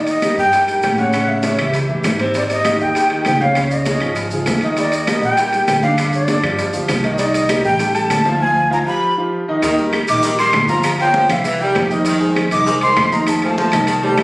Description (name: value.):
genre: latin, salsa.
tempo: 198 BPM.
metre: 4/4.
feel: straight.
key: unclear.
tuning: A4 = 441 Hz.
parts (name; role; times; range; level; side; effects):
bright upright piano; accompaniment; 0.0-14.2 s; C3 to F5; -20 LUFS; equal; none.
breathy jazz flute; melody; 0.1-14.2 s; D5 to D6; -17 LUFS; equal; plate reverb.
bongos; percussion; 0.1-14.2 s; none; -26 LUFS; left 1 dB; none.
congas; percussion; 0.1-14.2 s; none; -25 LUFS; equal; none.
maracas; percussion; 0.1-14.2 s; none; -32 LUFS; right 1 dB; none.
timbales; percussion; 0.1-14.2 s; none; -25 LUFS; right 1 dB; none.
claves; percussion; 0.2-14.2 s; none; -27 LUFS; equal; none.
upright bass; bass; 0.4-14.2 s; G1 to A2; -23 LUFS; equal; none.
clear saxophone section; second line; 9.6-14.2 s; Eb3 to G3; -21 LUFS; equal; none.
room: moderate studio reverb, RT60 0.6 s.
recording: recorded on a phone in the room, studio reverb.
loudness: -14 LUFS.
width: side -22 dB against mid.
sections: 0.0-9.6 A section; 9.6-14.2 B section.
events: none.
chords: 0.0 Eb7#11; 1.1 A7; 2.3 Abmaj7; 3.6 Dbadd9; 4.8 Ebmaj7; 6.0 G5; 7.2 Cm7; 7.8 Dmadd11/A; 8.4 Ddim; 9.0 Ebadd9; 9.6 Ebmaj7; 10.8 Gm7b5; 11.4 C7; 12.1 Fm7; 13.3 F7.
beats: 0.22 0.53 0.83 | 1.13 1.44 1.74 2.04 | 2.35 2.65 2.95 3.25 | 3.56 3.86 4.16 4.47 | 4.77 5.07 5.38 5.68 | 5.98 6.29 6.59 6.89 | 7.20 7.50 7.80 8.11 | 8.41 8.71 9.02 9.32 | 9.63 9.93 10.23 10.54 | 10.84 11.14 11.45 11.75 | 12.06 12.36 12.66 12.97 | 13.27 13.57 13.88 14.18.